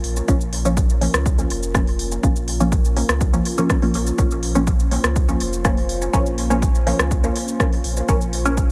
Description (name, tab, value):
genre	dub techno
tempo	123 BPM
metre	4/4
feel	straight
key	Bb minor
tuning	A4 = 440 Hz
part	deep dark ambient pad	sustained chords	0.0-8.7 s	Bb3 to C5	-31 LUFS	equal	chorus, built-in reverb, sidechain pumping
part	warm sub bass	bass	0.0-8.7 s	F1 to Db2	-26 LUFS	equal	sidechain pumping
part	deep house drum kit	drums	0.0-8.7 s	hi-hat, rim click, shaker	-28 LUFS	equal	dub echo
part	filtered dub chord stab	stabs	0.3-8.7 s	F3 to Db4	-26 LUFS	equal	phaser, sidechain pumping, dub echo
part	electronic kick drum	drums	0.3-8.7 s	none	-22 LUFS	equal	none
room	light reverb, digital ambience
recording	vinyl crackle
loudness	-19 LUFS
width	mono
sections	0.0-8.7 A section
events	filter sweep on synth stab 0.0-8.7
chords	0.0 Bbm